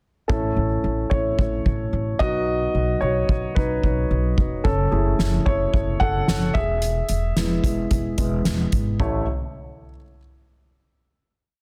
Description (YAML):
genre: piano-driven pop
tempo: 110 BPM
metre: 4/4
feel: straight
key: A lydian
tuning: A4 = 440 Hz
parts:
  - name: warm upright piano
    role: accompaniment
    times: 0.3-9.3 s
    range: A1 to F#5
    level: -26 LUFS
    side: equal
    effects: none
  - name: upright bass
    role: bass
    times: 0.3-9.2 s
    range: E1 to B1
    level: -27 LUFS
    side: equal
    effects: none
  - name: soft-mallet drum kit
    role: drums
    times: 0.3-9.1 s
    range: hi-hat, kick drum, snare drum, toms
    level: -26 LUFS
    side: equal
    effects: none
room: light reverb, small room ambience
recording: dense, heavily limited modern master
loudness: -22 LUFS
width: mono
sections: 0.3-9.0 verse; 9.0-11.2 final chord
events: upright piano solo 0.3-9.0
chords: 0.3 A; 2.2 B; 4.6 F#m7; 6.5 E; 9.0 A